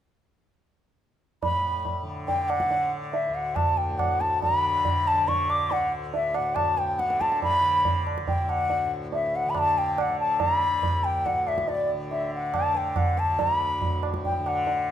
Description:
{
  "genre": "indian classical, Hindustani",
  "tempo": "140 BPM",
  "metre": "7/4",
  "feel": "straight",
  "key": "D raga bilaval",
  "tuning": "A4 = 440 Hz",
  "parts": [
    { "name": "bright reedy bansuri", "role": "melody", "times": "1.4-14.9 s", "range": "D5 to D6", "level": "-24 LUFS", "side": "left 1 dB", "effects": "none" },
    { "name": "tanpura", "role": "drone", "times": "1.4-14.9 s", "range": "D2 to D3", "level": "-34 LUFS", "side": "equal", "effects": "none" },
    { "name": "tabla", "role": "percussion", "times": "1.4-14.8 s", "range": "none", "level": "-30 LUFS", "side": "right 4 dB", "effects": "none" }
  ],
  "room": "moderate recital hall reverb, RT60 1.6 s",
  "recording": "minimal, uncompressed stereo recording",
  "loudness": "-23 LUFS",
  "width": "side -10 dB against mid",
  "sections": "1.4-14.9 A section",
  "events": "none",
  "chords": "none"
}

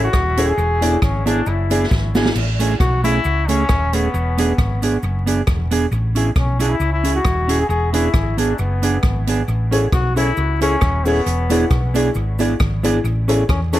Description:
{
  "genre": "ska",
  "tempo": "135 BPM",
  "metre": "4/4",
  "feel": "swing 54% on 8ths",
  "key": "A major",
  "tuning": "A4 = 441 Hz",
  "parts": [
    { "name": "brilliant trombone", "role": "melody", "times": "0.0-13.8 s", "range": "B3 to G#4", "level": "-23 LUFS", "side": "left 3 dB", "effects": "dub echo" },
    { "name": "mellow electric guitar", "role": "accompaniment", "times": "0.0-13.8 s", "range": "A3 to G#4", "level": "-22 LUFS", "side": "right 3 dB", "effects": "dub echo" },
    { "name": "dark upright piano", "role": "stabs", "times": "0.0-2.3, 9.7-13.8 s", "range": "E4 to D5", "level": "-25 LUFS", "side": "left 4 dB", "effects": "dub echo" },
    { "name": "hollow-body short-scale fingered electric bass", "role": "bass", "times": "0.0-13.8 s", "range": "D#1 to E2", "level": "-20 LUFS", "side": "equal", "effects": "none" },
    { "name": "swinging big-band drum kit", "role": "drums", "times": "0.1-13.8 s", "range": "crash cymbal, hi-hat, kick drum, rim click, snare drum", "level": "-21 LUFS", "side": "equal", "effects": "dub echo" },
    { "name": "cabasa", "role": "percussion", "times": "0.1-13.8 s", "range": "none", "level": "-40 LUFS", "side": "right 4 dB", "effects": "none" }
  ],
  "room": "light reverb, small room ambience",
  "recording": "vinyl crackle",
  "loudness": "-15 LUFS",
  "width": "side -14 dB against mid",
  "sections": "0.0-2.4 A section; 2.4-13.8 A section",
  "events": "drum fill 1.9-2.4",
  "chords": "0.0 Amaj7; 0.6 E7; 2.4 Amaj7; 4.1 E7; 5.9 Amaj7; 7.7 E7; 9.5 Amaj7; 11.3 E7; 13.0 Amaj7"
}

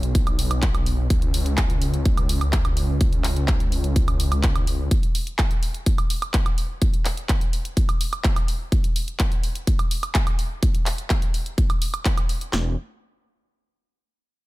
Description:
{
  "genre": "EDM, festival progressive house",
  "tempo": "126 BPM",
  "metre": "4/4",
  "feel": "straight",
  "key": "unclear",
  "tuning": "A4 = 441 Hz",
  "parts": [
    { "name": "wide detuned saw bass", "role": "bass", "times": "0.0-4.9, 12.5-12.8 s", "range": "E1 to C#2", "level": "-23 LUFS", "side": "equal", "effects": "chorus, sidechain pumping" },
    { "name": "big-room dance drum kit", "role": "drums", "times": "0.0-12.5 s", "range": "handclaps, hi-hat, woodblock", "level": "-28 LUFS", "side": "right 1 dB", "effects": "studio reverb" },
    { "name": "big-room dance drum kit", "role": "drums", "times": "0.1-12.6 s", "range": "handclaps, kick drum, snare drum", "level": "-21 LUFS", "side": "equal", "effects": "studio reverb" }
  ],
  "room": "little or no reverb",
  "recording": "none",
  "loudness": "-20 LUFS",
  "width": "side -19 dB against mid",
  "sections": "0.0-12.5 A section; 12.5-14.4 B section",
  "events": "none",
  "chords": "none"
}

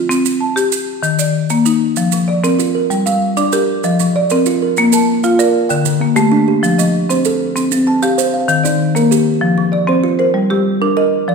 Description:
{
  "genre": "southern african traditional, mbira-style interlocking cycle",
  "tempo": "129 BPM (dotted quarters)",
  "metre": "12/8",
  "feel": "straight",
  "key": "F mixolydian",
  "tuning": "A4 = 440 Hz",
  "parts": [
    { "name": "marimba with medium hard mallets", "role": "arpeggios", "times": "0.0-11.3 s", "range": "D3 to A5", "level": "-14 LUFS", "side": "left 2 dB", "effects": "none" },
    { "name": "maracas", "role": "percussion", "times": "0.1-9.3 s", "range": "none", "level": "-23 LUFS", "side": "right 10 dB", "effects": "none" },
    { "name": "kalimba", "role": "arpeggios", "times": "2.1-11.3 s", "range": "D3 to A5", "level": "-17 LUFS", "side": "right 5 dB", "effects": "none" }
  ],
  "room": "wet recital hall reverb, RT60 1.6 s",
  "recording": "heard from further back in the room",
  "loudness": "-12 LUFS",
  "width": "side -5 dB against mid",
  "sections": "0.0-9.4 A section; 9.4-11.3 B section",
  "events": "none",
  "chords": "0.1 C5; 1.0 Eb5; 2.0 F5; 2.9 Gm; 3.8 F5; 4.8 Bb; 5.7 D5; 6.6 F; 7.6 C5; 8.5 Eb; 9.4 F5; 10.4 Gm"
}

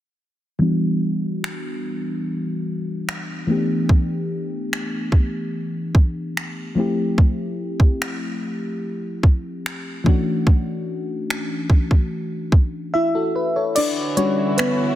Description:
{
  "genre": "contemporary R&B",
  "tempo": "73 BPM",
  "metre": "4/4",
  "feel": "straight",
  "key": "E dorian",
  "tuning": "A4 = 444 Hz",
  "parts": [
    { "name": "mellow FM electric piano", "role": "accompaniment", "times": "0.6-15.0 s", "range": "E3 to E5", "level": "-22 LUFS", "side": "left 1 dB", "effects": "chorus, low-pass filter" },
    { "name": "trap drum kit", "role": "drums", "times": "1.4-14.8 s", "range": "crash cymbal, finger snaps, hi-hat, kick drum", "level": "-18 LUFS", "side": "equal", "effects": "soft clipping on snare" },
    { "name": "dark studio string section", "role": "sustained chords", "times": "13.8-15.0 s", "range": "D3 to F#4", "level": "-26 LUFS", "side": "right 2 dB", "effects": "sidechain pumping" }
  ],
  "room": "light reverb, digital ambience",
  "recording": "dense, heavily limited modern master",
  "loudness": "-19 LUFS",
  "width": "side -13 dB against mid",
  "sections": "0.6-13.8 A section; 13.8-15.0 B section",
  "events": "filter sweep on FM electric piano 0.6-13.8; drums muted 12.9-13.8; kick muted 13.8-15.0; FM electric piano solo 13.8-15.0",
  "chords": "0.6 Em9; 3.5 A9sus4/E; 6.8 Fmaj9; 10.1 Dmaj9; 13.8 Em9"
}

